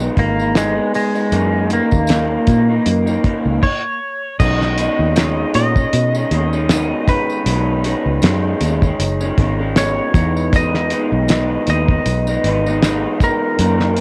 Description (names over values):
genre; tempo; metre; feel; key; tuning
indie pop, bedroom pop; 78 BPM; 4/4; swing 55% on 16ths; B major; A4 = 439 Hz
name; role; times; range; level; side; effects
electric guitar through a small old amp; accompaniment; 0.0-14.0 s; F#2 to D#4; -22 LUFS; equal; lush chorus, warbly pitch drift, cassette tape
fingered electric bass; bass; 0.0-14.0 s; F#1 to B2; -21 LUFS; equal; none
tambourine; percussion; 0.0-14.0 s; none; -38 LUFS; equal; none
clean lap steel guitar; melody; 0.2-14.0 s; G#3 to D#5; -22 LUFS; equal; subtle chorus
cloth-damped thuddy drum kit; drums; 0.2-14.0 s; crash cymbal, hi-hat, kick drum, snare drum; -20 LUFS; equal; cassette tape
room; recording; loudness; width
light reverb; home recording on cassette; -17 LUFS; mono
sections
0.0-4.4 A section; 4.4-14.0 B section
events
stop 3.6-4.4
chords
0.0 Emaj7; 1.3 F#6; 4.4 B69; 10.1 Emaj7